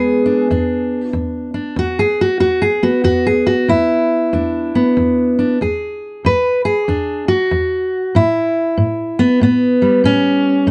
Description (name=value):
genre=acoustic country blues, solo or duo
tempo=94 BPM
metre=4/4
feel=swing 63% on 8ths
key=E mixolydian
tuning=A4 = 442 Hz
part: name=fingerpicked steel-string acoustic guitar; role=solo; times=0.0-10.7 s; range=E2 to B4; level=-16 LUFS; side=equal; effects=none
room=wet studio reverb, RT60 0.5 s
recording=nothing above 10.8 kHz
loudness=-16 LUFS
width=mono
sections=0.0-10.7 A section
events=steel-string acoustic guitar solo 0.0-10.7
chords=0.0 E7; 8.1 A7